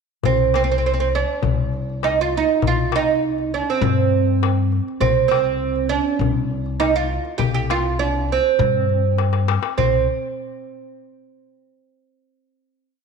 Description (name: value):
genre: Arabic maqam ensemble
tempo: 101 BPM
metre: 4/4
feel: straight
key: C maqam bayati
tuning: A4 = 442 Hz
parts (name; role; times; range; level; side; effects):
- darbuka; percussion; 0.2-10.1 s; none; -24 LUFS; left 13 dB; none
- oud; melody; 0.3-10.1 s; C4 to G4; -20 LUFS; right 8 dB; none
- upright bass; bass; 0.3-10.1 s; C2 to G2; -22 LUFS; left 3 dB; none
room: moderate echo chamber reverb, RT60 1.7 s, studio reverb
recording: 1960s-style stereo with parts hard left and right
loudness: -17 LUFS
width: side -5 dB against mid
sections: 0.2-9.8 A section; 9.8-12.2 final note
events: drum fill 9.2-9.8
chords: none